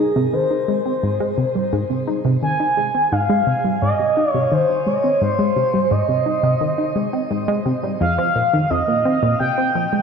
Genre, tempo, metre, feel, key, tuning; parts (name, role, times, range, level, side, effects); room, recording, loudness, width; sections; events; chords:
ambient, sequencer-driven space music; 86 BPM; 4/4; straight; A4 = 440 Hz
expressive synth lead; melody; 0.0-10.0 s; Ab4 to Ab5; -19 LUFS; equal; lush chorus, shimmer reverb, tape echo
tight sequenced synth; riff; 0.0-10.0 s; F2 to Eb4; -20 LUFS; equal; chorus, tape echo
wet echo chamber reverb, RT60 2.3 s; echo-heavy mix; -16 LUFS; side -6 dB against mid
0.0-10.0 A section
0.0 Ab; 8.0 F5